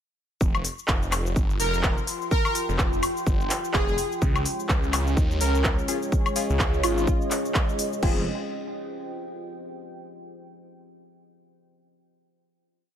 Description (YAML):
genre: bass house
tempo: 126 BPM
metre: 4/4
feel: swing 58% on 16ths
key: F minor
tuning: A4 = 436 Hz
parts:
  - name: phased detuned saw bass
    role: bass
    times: 0.4-8.2 s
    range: F1 to Eb2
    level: -27 LUFS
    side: equal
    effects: phaser, sidechain pumping
  - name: big-room dance drum kit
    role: drums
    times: 0.4-8.1 s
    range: crash cymbal, handclaps, hi-hat, shaker, woodblock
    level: -29 LUFS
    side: left 2 dB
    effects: overdrive
  - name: electronic kick drum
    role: drums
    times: 0.4-8.1 s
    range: none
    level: -24 LUFS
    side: equal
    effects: none
  - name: deep dark ambient pad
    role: texture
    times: 1.3-9.9 s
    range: Db4 to C6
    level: -32 LUFS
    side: equal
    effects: chorus, built-in reverb, sidechain pumping
  - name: airy dreamy lead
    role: melody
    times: 1.6-7.0 s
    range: F4 to Bb4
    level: -29 LUFS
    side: equal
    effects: chorus, ping-pong delay
  - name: dark analog pad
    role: sustained chords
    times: 4.2-8.2 s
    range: Ab3 to Db5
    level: -34 LUFS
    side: right 1 dB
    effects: chorus, sidechain pumping
  - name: band-passed chord stab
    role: stabs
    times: 5.9-8.2 s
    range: C4 to Ab4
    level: -33 LUFS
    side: left 4 dB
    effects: phaser, sidechain pumping, ping-pong delay
room: light reverb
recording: none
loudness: -22 LUFS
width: side -9 dB against mid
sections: 0.4-8.0 drop; 8.0-9.9 final chord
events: drop 0.4-8.0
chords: 0.4 F5; 4.2 Db; 8.0 Fm